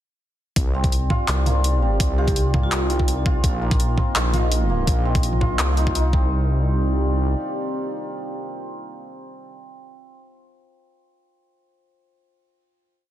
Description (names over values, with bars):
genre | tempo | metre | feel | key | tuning
half-time drum and bass | 167 BPM | 4/4 | swing 54% on 16ths, half-time | C minor | A4 = 445 Hz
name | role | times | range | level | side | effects
dark analog pad | sustained chords | 1.0-9.5 s | Bb3 to Eb5 | -30 LUFS | right 1 dB | chorus, sidechain pumping
dark detuned saw bass | bass | 0.6-7.3 s | Bb1 to C2 | -21 LUFS | equal | none
drum and bass drum kit | drums | 0.6-6.0 s | handclaps, hi-hat, toms | -25 LUFS | right 1 dB | overdrive, small room ambience
electronic kick drum | drums | 0.6-6.2 s | none | -21 LUFS | equal | overdrive, small room ambience
santur | arpeggios | 0.7-10.1 s | Bb3 to F4 | -29 LUFS | equal | vintage 12-bit sampler grit, ping-pong delay
vibraphone with medium mallets | melody | 2.2-3.0 s | F4 to G4 | -29 LUFS | right 1 dB | vintage 12-bit sampler grit, digital delay
room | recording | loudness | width
little or no reverb | dense, heavily limited modern master | -18 LUFS | side -12 dB against mid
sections
0.6-6.3 drop; 6.3-9.2 final hit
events
drop 0.6-6.3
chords
0.6 Cmadd9; 3.4 Bbsus4; 6.1 Cmadd9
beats
| 0.56 0.92 1.28 1.64 | 2.00 2.36 2.72 3.08 | 3.44 3.80 4.16 4.51 | 4.88 5.23 5.59 5.95 | 6.31 6.67 7.03 7.39 | 7.75 8.11 8.47 8.83